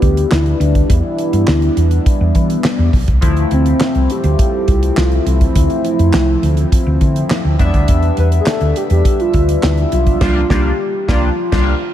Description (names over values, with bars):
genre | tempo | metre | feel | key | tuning
early-eighties boogie funk | 103 BPM | 4/4 | straight | unclear | A4 = 440 Hz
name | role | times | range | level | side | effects
soft octave-layered synth lead | melody | 0.0-11.9 s | C4 to B4 | -19 LUFS | right 1 dB | chorus, phaser
chorused polysynth | accompaniment | 0.0-11.7 s | F3 to E5 | -19 LUFS | left 2 dB | phaser
hollow-body short-scale fingered electric bass | bass | 0.0-11.7 s | B1 to E3 | -14 LUFS | equal | none
damped 70s drum kit | drums | 0.0-11.7 s | crash cymbal, handclaps, hi-hat, kick drum, snare drum | -16 LUFS | equal | none
room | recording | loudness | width
light reverb, studio ambience | none | -12 LUFS | side -11 dB against mid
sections
0.0-11.9 A section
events
band accent 10.2-11.9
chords
0.0 Em7; 3.2 Dm9; 7.6 Em7; 10.2 C9sus4